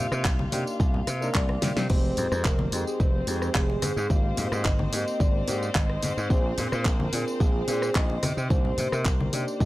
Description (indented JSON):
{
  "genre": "nu-disco, nu disco",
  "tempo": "109 BPM",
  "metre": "4/4",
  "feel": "straight",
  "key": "unclear",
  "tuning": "A4 = 435 Hz",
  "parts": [
    { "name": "dark concert grand piano", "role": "accompaniment", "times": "0.0-9.7 s", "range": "Ab3 to Bb4", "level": "-34 LUFS", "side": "left 1 dB", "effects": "sidechain pumping" },
    { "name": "warm chamber string section", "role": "sustained chords", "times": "0.0-9.7 s", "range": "C4 to F5", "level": "-36 LUFS", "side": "left 2 dB", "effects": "sidechain pumping" },
    { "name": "slap bass", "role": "bass", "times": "0.0-9.7 s", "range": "F1 to C3", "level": "-29 LUFS", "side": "equal", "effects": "sidechain pumping" },
    { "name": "pop drum kit", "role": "drums", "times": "0.1-9.7 s", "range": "crash cymbal, handclaps, hi-hat, rim click, snare drum, tambourine", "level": "-31 LUFS", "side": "equal", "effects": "none" },
    { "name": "electronic kick drum", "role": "drums", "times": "0.2-9.7 s", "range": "none", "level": "-24 LUFS", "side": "equal", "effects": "none" },
    { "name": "congas", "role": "percussion", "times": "0.4-9.3 s", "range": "none", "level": "-33 LUFS", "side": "left 2 dB", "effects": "none" },
    { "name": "soft octave-layered synth lead", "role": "melody", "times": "1.3-9.7 s", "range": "Ab4 to F5", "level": "-32 LUFS", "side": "right 1 dB", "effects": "chorus, phaser, cassette tape, analog delay" }
  ],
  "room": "digital ambience",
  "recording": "dry, gritty hardware recording",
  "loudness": "-23 LUFS",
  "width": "side -17 dB against mid",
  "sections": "0.0-9.7 A section",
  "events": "drum fill 1.6",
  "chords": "0.0 Cm7; 1.9 Fm7; 3.8 Abmaj7; 6.3 Bb7; 8.2 Cm7"
}